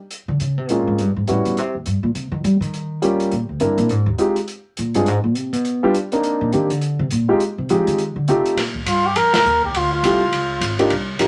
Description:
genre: jazz, small-group swing and bop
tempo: 206 BPM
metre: 4/4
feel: swing 61% on 8ths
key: unclear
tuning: A4 = 440 Hz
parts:
  - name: open jazz drum kit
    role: drums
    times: 0.1-11.3 s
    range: hi-hat, kick drum, ride cymbal, snare drum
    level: -29 LUFS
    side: equal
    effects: none
  - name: upright bass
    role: bass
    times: 0.3-11.3 s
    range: Ab1 to G3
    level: -24 LUFS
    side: equal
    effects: none
  - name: warm upright piano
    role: accompaniment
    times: 0.7-11.3 s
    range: G3 to Bb4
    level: -20 LUFS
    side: equal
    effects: none
  - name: breathy trumpet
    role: melody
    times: 8.9-10.8 s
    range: F4 to Bb4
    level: -20 LUFS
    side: equal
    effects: none
room: moderate studio ambience, RT60 0.5 s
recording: none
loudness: -19 LUFS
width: mono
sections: 0.0-8.6 A section; 8.6-11.3 B section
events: upright bass solo 0.0-8.6; band accent 9.3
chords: 0.4 Bbm9; 1.0 A13; 1.6 Eb6; 2.7 Gm7b5; 3.3 C7; 3.9 Fm9; 5.1 Abmadd9; 5.7 G7; 6.2 Cm7; 7.4 Fm7; 8.0 F7; 8.6 Bb5; 9.7 Dm11; 10.3 Dbadd9

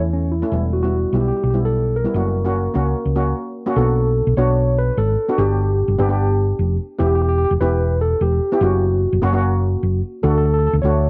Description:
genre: calypso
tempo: 148 BPM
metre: 4/4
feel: straight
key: B minor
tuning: A4 = 442 Hz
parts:
  - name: steel pan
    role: accompaniment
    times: 0.0-11.1 s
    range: G3 to G4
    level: -25 LUFS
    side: equal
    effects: cassette tape
  - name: hollow-body short-scale fingered electric bass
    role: bass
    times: 0.0-11.1 s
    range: E1 to E2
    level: -21 LUFS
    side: equal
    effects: none
  - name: tine electric piano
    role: melody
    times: 0.1-11.1 s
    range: C#4 to C#5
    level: -24 LUFS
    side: equal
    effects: cassette tape, analog delay
room: light reverb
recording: home recording on cassette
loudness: -18 LUFS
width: mono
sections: 0.0-3.8 A section; 3.8-11.1 B section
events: break 3.4-3.8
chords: 0.0 A; 0.5 Em; 2.2 F#; 3.8 Bm7; 5.4 G; 7.0 Em; 8.6 F#; 10.2 Dmaj7

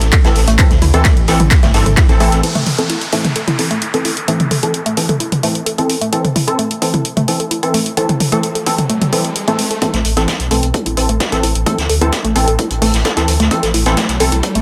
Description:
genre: driving peak-time techno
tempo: 130 BPM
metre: 4/4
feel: straight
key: A minor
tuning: A4 = 443 Hz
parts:
  - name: dark detuned saw bass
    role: bass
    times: 0.0-2.4, 9.9-14.6 s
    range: G1 to D2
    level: -18 LUFS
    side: equal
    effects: sidechain pumping
  - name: jazz brush drum kit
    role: drums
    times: 0.0-2.4, 9.8-14.5 s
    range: hi-hat, snare drum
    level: -25 LUFS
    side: equal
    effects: high-pass filter on hats, high-pass filter on snare, high-pass filter on room
  - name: punchy analog drum machine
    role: drums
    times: 0.0-14.6 s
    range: handclaps, hi-hat, ride cymbal, toms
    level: -20 LUFS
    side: equal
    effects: overdrive, high-pass filter on snare, sidechain pumping on hats, high-pass filter on hats, sidechain pumping on cymbals, high-pass filter on cymbals, sidechain pumping on toms, high-pass filter on toms
  - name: woody wave-folded pluck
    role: riff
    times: 0.1-14.6 s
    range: A3 to A4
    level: -23 LUFS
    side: equal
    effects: chorus, overdrive, sidechain pumping, tape echo
  - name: electronic kick drum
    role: drums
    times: 0.1-2.1, 9.8-14.5 s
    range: none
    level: -17 LUFS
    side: equal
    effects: high-pass filter on kick, high-pass filter on room
  - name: rave stab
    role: stabs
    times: 0.2-14.3 s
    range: E3 to A4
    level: -21 LUFS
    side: equal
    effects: chorus, built-in reverb, sidechain pumping, tape echo
  - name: downlifter and riser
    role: sound effects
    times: 2.4-14.6 s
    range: none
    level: -29 LUFS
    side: equal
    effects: none
room: moderate stone room reverb, RT60 1.4 s, digital ambience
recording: dense, heavily limited modern master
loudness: -14 LUFS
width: mono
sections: 0.0-2.4 A section; 2.4-9.8 B section; 9.8-14.6 C section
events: drop 0.0-2.4; filter sweep on synth stab 2.4-9.8; riser 7.6-9.8; build-up 9.8-14.6; drum fill 13.5-14.6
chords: 0.0 Am

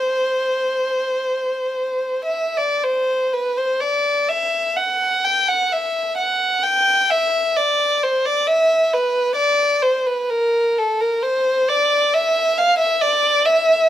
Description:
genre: classical, free, expressive piece for unaccompanied violin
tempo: 43-69 BPM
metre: 4/4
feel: rubato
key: unclear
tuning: A4 = 440 Hz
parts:
  - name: dark violin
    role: solo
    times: 0.0-13.9 s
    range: A4 to G5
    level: -16 LUFS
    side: equal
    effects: none
room: moderate large studio reverb, RT60 1.0 s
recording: minimal, uncompressed stereo recording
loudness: -16 LUFS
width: side -12 dB against mid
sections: 0.0-2.8 A section; 2.8-13.9 B section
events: none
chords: none

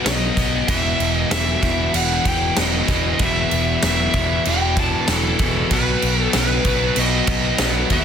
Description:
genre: hard rock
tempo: 96 BPM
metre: 4/4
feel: straight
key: unclear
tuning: A4 = 440 Hz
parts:
  - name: overdriven semi-hollow guitar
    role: riff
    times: 0.0-8.0 s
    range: E2 to B3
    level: -25 LUFS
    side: left 11 dB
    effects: none
  - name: scooped high-gain guitar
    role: riff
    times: 0.0-8.0 s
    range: E2 to B3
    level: -26 LUFS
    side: left 1 dB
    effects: distortion
  - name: bluesy overdriven lead guitar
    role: melody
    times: 0.1-8.0 s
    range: A4 to A5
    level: -23 LUFS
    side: left 2 dB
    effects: distortion
  - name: picked electric bass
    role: bass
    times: 0.1-8.0 s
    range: E1 to D#2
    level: -24 LUFS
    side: right 1 dB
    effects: none
  - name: huge arena drum kit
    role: drums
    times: 0.1-8.0 s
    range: crash cymbal, kick drum, snare drum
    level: -21 LUFS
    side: right 1 dB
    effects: none
  - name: overdriven semi-hollow guitar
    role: riff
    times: 0.7-8.0 s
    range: E2 to B3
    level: -26 LUFS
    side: right 12 dB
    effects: none
room: light reverb, small room ambience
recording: dense, heavily limited modern master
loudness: -16 LUFS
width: side -8 dB against mid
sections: 0.0-8.0 A section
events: none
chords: 0.0 B; 0.7 E5; 5.7 B

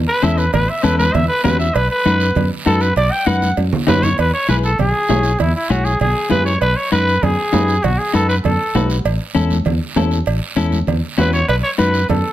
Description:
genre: latin, cumbia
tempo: 197 BPM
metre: 4/4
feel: straight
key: E major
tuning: A4 = 440 Hz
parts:
  - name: fingered electric bass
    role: bass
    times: 0.0-12.2 s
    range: A1 to F#2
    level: -18 LUFS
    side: equal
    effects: none
  - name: growling trumpet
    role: melody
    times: 0.1-8.9, 11.2-12.3 s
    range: E4 to G5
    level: -18 LUFS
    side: equal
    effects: none
  - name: clean electric guitar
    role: accompaniment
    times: 0.2-12.0 s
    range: C#4 to C#5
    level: -20 LUFS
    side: left 6 dB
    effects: none
  - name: congas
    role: percussion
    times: 0.2-12.2 s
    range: none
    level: -23 LUFS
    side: right 1 dB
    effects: none
  - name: guiro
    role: percussion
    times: 0.2-12.3 s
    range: none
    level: -31 LUFS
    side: right 6 dB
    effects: none
  - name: cowbell and timbales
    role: percussion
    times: 0.5-12.2 s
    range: none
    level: -23 LUFS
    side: right 8 dB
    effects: none
room: light reverb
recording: close, detailed microphones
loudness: -14 LUFS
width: side -13 dB against mid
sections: 0.0-4.2 A section; 4.2-12.3 B section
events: trumpet solo 0.0-4.2; drum fill 3.3-4.2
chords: 0.0 A; 1.8 B; 4.2 E; 6.6 B7; 9.1 A; 11.5 B7

